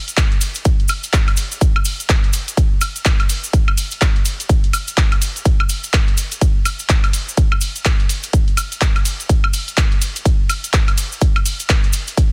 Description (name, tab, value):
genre	house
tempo	125 BPM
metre	4/4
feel	swing 60% on 16ths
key	none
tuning	none
part	big-room dance drum kit	drums	0.1-12.3 s	handclaps, hi-hat, ride cymbal, woodblock	-24 LUFS	equal	studio ambience
part	cabasa	percussion	0.1-12.3 s	none	-28 LUFS	equal	none
part	electronic kick drum	drums	0.2-12.3 s	none	-18 LUFS	equal	studio ambience
room	little or no reverb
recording	dense, heavily limited modern master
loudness	-17 LUFS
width	mono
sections	0.0-12.3 A section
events	none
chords	none